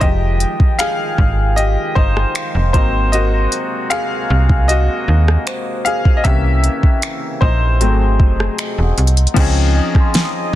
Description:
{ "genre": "contemporary R&B", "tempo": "77 BPM", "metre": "4/4", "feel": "straight", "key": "unclear", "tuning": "A4 = 439 Hz", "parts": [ { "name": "clear grand piano", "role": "accompaniment", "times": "0.0-10.6 s", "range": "E3 to F5", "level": "-19 LUFS", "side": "left 3 dB", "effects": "none" }, { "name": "dark brass ensemble", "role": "sustained chords", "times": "0.0-10.6 s", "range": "C3 to G5", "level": "-27 LUFS", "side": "right 1 dB", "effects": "stereo widening, sidechain pumping" }, { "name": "slap-like FM bass", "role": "bass", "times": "0.0-9.8 s", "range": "E1 to Eb2", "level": "-14 LUFS", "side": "equal", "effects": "none" }, { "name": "smooth R&B drum kit", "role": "drums", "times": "0.0-10.3 s", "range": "crash cymbal, finger snaps, hi-hat, kick drum, rim click, snare drum", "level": "-15 LUFS", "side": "equal", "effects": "soft clipping on snare" }, { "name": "celesta", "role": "texture", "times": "2.4-10.6 s", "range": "Bb4 to Eb6", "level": "-30 LUFS", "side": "equal", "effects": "digital delay" } ], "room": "little or no reverb", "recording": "dense, heavily limited modern master", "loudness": "-13 LUFS", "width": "side -14 dB against mid", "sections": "0.0-9.4 A section; 9.4-10.6 B section", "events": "grand piano solo 0.0-9.4", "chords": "0.0 Fm9; 2.7 Ab9; 6.2 C7b9; 7.8 Ab7b9; 9.4 Dbmaj9" }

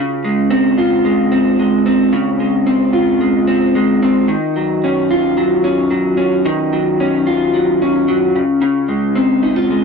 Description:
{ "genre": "indie pop", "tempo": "111 BPM", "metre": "4/4", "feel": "straight", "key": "unclear", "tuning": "A4 = 440 Hz", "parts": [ { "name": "electric guitar through a small old amp", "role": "solo", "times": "0.0-9.8 s", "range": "Db3 to F4", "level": "-12 LUFS", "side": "equal", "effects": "analog chorus, warbly pitch drift" } ], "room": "digital ambience", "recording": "dry, close 1970s-style studio recording", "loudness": "-12 LUFS", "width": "side -5 dB against mid", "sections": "0.0-9.8 A section", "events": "none", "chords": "0.0 Dbmaj7; 4.3 Ebm9; 8.4 Dbmaj7" }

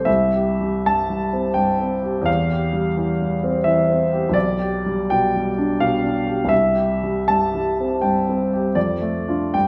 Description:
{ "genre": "classical, romantic character piece for solo piano", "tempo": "71-88 BPM", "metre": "3/4", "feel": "rubato", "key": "C major from 4.4 s", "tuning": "A4 = 439 Hz", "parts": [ { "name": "clear grand piano", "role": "solo", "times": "0.0-9.7 s", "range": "B1 to A5", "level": "-20 LUFS", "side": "equal", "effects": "none" } ], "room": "moderate recital hall reverb, RT60 1.6 s", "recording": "none", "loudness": "-20 LUFS", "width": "mono", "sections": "0.0-9.7 A section", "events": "none", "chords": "0.1 C; 2.3 C/E; 4.4 G/B; 6.5 C; 8.8 Dm/F" }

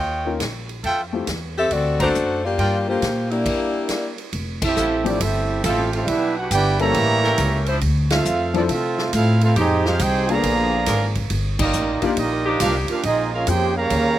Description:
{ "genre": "jazz, big band swing", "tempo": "138 BPM", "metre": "4/4", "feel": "swing 66% on 8ths", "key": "F major", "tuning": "A4 = 440 Hz", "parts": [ { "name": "warm trumpet section", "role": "stabs", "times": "0.0-2.8 s", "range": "F4 to Bb5", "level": "-24 LUFS", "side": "right 1 dB", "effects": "slapback echo" }, { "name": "upright bass", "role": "bass", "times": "0.0-14.2 s", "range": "F1 to C3", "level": "-23 LUFS", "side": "equal", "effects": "none" }, { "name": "warm grand piano", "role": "accompaniment", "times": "0.2-13.7 s", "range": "F3 to Bb4", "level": "-24 LUFS", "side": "left 6 dB", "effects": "slapback echo" }, { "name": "swinging big-band drum kit", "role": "drums", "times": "0.4-14.0 s", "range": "crash cymbal, hi-hat, kick drum, ride cymbal, snare drum", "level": "-28 LUFS", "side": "right 1 dB", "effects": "none" }, { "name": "warm saxophone section", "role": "melody", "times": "1.6-4.1 s", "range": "A3 to E5", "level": "-21 LUFS", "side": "left 3 dB", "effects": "slapback echo" }, { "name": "dark trombone section", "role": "second line", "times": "3.3-14.2 s", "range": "Db3 to G4", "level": "-23 LUFS", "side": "right 4 dB", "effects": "none" }, { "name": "warm trumpet section", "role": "melody", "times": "4.6-14.2 s", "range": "Bb3 to Bb5", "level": "-24 LUFS", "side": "right 2 dB", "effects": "slapback echo" }, { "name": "dark saxophone section", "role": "sustained chords", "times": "4.8-13.0 s", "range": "F3 to C5", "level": "-24 LUFS", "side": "left 1 dB", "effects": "none" } ], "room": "little or no reverb", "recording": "recorded outdoors, with no room sound", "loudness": "-18 LUFS", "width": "side -12 dB against mid", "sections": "0.0-4.3 A section; 4.3-14.2 B section", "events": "band accent 1.9, 4.5, 8.0, 11.5; stop 3.5-4.3", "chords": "0.0 Eb9; 0.8 Fmaj9; 1.7 D7b13; 2.6 Gm7; 3.5 Gm6; 4.3 Fmaj9; 6.1 Em7; 6.9 A7b9; 7.8 Dm9; 9.6 Fm9; 10.4 Bb7b9; 11.3 Ebmaj9; 13.0 Bbm7" }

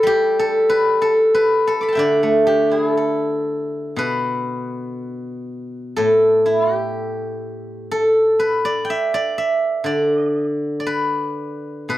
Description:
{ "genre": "chinese traditional, Chinese solo plucked strings", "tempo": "61 BPM", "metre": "2/4", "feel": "uneven beats, rubato", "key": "D zhi mode", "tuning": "A4 = 441 Hz", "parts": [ { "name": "steel-string zither", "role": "solo", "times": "0.0-12.0 s", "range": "A2 to D6", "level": "-17 LUFS", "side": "equal", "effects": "none" } ], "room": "light reverb", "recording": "dry, close 1970s-style studio recording", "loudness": "-16 LUFS", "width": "side -14 dB against mid", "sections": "0.0-4.0 A section; 4.0-12.0 B section", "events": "none", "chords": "none" }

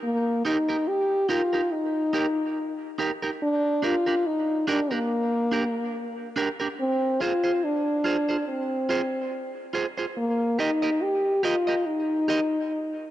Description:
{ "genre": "reggae", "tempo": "71 BPM", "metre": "4/4", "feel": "swing 56% on 16ths", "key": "Eb major", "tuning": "A4 = 441 Hz", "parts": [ { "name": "mellow French horn", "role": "melody", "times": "0.0-13.1 s", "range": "Bb3 to G4", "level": "-24 LUFS", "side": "left 1 dB", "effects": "dub echo" }, { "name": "electric guitar at the edge of break-up", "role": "accompaniment", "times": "0.5-12.4 s", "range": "D4 to Eb5", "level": "-30 LUFS", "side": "right 3 dB", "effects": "dub echo" } ], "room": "moderate plate reverb, RT60 3.4 s", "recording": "dark, warm production, nothing above 10.5 kHz", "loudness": "-23 LUFS", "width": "side -13 dB against mid", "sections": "0.0-13.1 A section", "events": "none", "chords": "0.0 Eb; 3.4 Gm; 6.8 Fm; 10.2 Eb" }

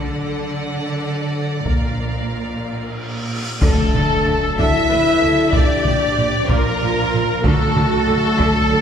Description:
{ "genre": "cinematic, epic orchestral film score", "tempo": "63 BPM (dotted quarters)", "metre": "6/8", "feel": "straight", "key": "D major", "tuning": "A4 = 439 Hz", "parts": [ { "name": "rich studio violin section", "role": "melody", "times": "0.0-8.8 s", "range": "A4 to F#5", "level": "-26 LUFS", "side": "left 3 dB", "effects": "none" }, { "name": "warm symphonic violin section", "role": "second line", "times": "0.0-8.8 s", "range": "A4 to E5", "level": "-27 LUFS", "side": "left 1 dB", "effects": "none" }, { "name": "rich symphonic viola section", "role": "accompaniment", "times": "0.0-8.8 s", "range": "F4 to B4", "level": "-27 LUFS", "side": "right 2 dB", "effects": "none" }, { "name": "mellow French horn section", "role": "sustained chords", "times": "0.0-8.8 s", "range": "F3 to E4", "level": "-24 LUFS", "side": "left 2 dB", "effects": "none" }, { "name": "rich studio cello section", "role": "bass", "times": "0.0-8.8 s", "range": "Bb2 to D3", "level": "-25 LUFS", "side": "right 2 dB", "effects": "none" }, { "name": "warm studio double bass section", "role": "bass", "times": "0.0-8.8 s", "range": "Bb1 to D2", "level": "-26 LUFS", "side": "right 2 dB", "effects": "none" }, { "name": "timpani", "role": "percussion", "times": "0.0-0.7, 3.6-4.5 s", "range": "D3", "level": "-28 LUFS", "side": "left 3 dB", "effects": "none" }, { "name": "taiko ensemble", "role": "drums", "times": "1.7-8.8 s", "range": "none", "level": "-21 LUFS", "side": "equal", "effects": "none" }, { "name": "cymbal swell and impact", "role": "sound effects", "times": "2.7-5.5 s", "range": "none", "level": "-28 LUFS", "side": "equal", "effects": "none" }, { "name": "flute section", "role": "second line", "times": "3.6-8.8 s", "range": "A4 to E5", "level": "-25 LUFS", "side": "left 1 dB", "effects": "none" }, { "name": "dark trombone section", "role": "sustained chords", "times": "3.6-8.8 s", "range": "F3 to D4", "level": "-30 LUFS", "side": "right 3 dB", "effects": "none" }, { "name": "dark trumpet section", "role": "stabs", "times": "3.6-8.8 s", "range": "A4 to E5", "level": "-23 LUFS", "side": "right 1 dB", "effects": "none" } ], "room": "wet concert hall reverb, RT60 2.2 s", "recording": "recorded in a church or concert hall", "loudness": "-16 LUFS", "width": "side -8 dB against mid", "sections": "0.0-3.6 A section; 3.6-8.8 B section", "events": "cymbal swell 2.7-3.6; impact 3.6-5.5", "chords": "0.0 D; 1.7 Bb; 3.6 D; 5.5 Bb; 7.4 D" }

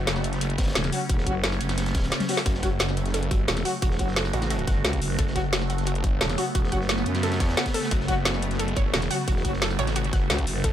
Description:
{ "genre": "dark technical drum and bass", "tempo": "176 BPM", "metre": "4/4", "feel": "straight", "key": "F# phrygian", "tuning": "A4 = 440 Hz", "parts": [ { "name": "swarming drone", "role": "sustained chords", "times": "0.0-10.7 s", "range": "C#3 to F#4", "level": "-30 LUFS", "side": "right 1 dB", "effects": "built-in reverb, phaser, sidechain pumping" }, { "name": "snarling distorted saw bass", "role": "bass", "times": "0.0-10.7 s", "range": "F#1 to A1", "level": "-28 LUFS", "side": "equal", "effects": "distortion, overdrive, sidechain pumping" }, { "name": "crunchy breakbeat drum kit", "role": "drums", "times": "0.1-10.7 s", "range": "hi-hat, snare drum", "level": "-37 LUFS", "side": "equal", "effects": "none" }, { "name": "drum and bass drum kit", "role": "drums", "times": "0.1-10.7 s", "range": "hi-hat, snare drum, toms", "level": "-28 LUFS", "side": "equal", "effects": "none" }, { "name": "electronic kick drum", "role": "drums", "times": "0.6-10.7 s", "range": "none", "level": "-25 LUFS", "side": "equal", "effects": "none" }, { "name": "growling FM bass", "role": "bass", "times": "0.8-10.6 s", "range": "E1 to F#2", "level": "-28 LUFS", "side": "equal", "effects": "none" }, { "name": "warm brass ensemble", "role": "stabs", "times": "0.9-9.5 s", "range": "F#3 to F#4", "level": "-33 LUFS", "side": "left 3 dB", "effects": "tape echo" }, { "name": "wide unison pluck", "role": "arpeggios", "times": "2.5-10.7 s", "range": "F#4 to F#5", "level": "-33 LUFS", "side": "moving between left 3 dB and right 8 dB", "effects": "auto-pan, sidechain pumping, tape echo" } ], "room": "studio ambience", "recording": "none", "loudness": "-22 LUFS", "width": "side -11 dB against mid", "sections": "0.0-10.7 A section", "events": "drum fill 2.1-2.5", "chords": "0.0 F#m" }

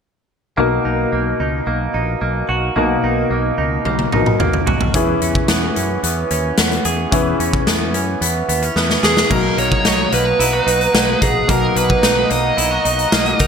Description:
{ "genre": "1980s-style pop", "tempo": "110 BPM", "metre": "4/4", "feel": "straight", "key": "B major", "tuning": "A4 = 440 Hz", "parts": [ { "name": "clear concert grand piano", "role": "accompaniment", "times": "0.6-13.5 s", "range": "B2 to A#5", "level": "-21 LUFS", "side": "left 3 dB", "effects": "wide subtle chorus" }, { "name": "direct-recorded clean electric guitar", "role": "riff", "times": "0.6-13.5 s", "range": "E3 to G#4", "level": "-22 LUFS", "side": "right 4 dB", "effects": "lush chorus, digital delay" }, { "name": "mellow fretless electric bass", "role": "bass", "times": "0.6-13.5 s", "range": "A#1 to F#2", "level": "-22 LUFS", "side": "equal", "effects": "none" }, { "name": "big rock drum kit", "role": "drums", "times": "3.9-13.5 s", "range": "crash cymbal, hi-hat, kick drum, snare drum, toms", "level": "-18 LUFS", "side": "left 1 dB", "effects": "gated reverb" }, { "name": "smooth overdriven lead guitar", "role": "melody", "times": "9.0-13.5 s", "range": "G#4 to D#5", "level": "-17 LUFS", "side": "right 2 dB", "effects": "digital delay" }, { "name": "lush unison pad", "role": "sustained chords", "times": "9.3-13.5 s", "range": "D#5 to D#6", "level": "-25 LUFS", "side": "right 1 dB", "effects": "chorus" } ], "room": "moderate plate reverb, RT60 2.3 s", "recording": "bright 1980s-style digital production", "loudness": "-14 LUFS", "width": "side -6 dB against mid", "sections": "0.6-9.3 A section; 9.3-13.5 B section", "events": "drum fill 3.9-4.9, 8.8-9.3", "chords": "0.6 Bmaj7; 4.9 E6; 9.3 Bmaj7" }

